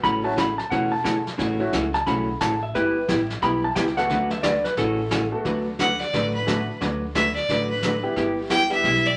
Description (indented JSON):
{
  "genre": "country, western swing",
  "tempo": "177 BPM",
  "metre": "4/4",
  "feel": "swing 63% on 8ths",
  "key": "D major",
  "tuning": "A4 = 440 Hz",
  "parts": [
    { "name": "clean lap steel guitar", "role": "second line", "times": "0.0-5.4 s", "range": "A4 to B5", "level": "-27 LUFS", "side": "equal", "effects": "none" },
    { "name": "vintage hollow-body jazz guitar", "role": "accompaniment", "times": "0.0-9.1 s", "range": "C#3 to B4", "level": "-27 LUFS", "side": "equal", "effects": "none" },
    { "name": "upright bass", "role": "bass", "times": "0.0-9.1 s", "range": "E1 to D2", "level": "-35 LUFS", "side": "equal", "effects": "none" },
    { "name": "vintage brush drum kit", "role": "drums", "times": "0.0-9.2 s", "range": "brushed snare drum, hi-hat, kick drum, snare drum", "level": "-33 LUFS", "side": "equal", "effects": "none" },
    { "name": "clear upright piano", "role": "accompaniment", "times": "0.2-1.7, 4.0-8.8 s", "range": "F#3 to A4", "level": "-31 LUFS", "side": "equal", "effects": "none" },
    { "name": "clear fiddle", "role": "melody", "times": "5.8-9.2 s", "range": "B4 to G5", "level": "-25 LUFS", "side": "equal", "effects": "none" }
  ],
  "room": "wet small room ambience, RT60 0.5 s",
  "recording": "none",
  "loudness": "-23 LUFS",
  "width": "mono",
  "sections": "0.0-5.5 A section; 5.5-9.2 A section",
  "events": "electric slide guitar solo 0.0-5.5; fiddle solo 5.5-9.2",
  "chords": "0.0 A6; 2.7 G6; 4.1 D6; 4.8 A6; 5.5 D6; 8.2 G6"
}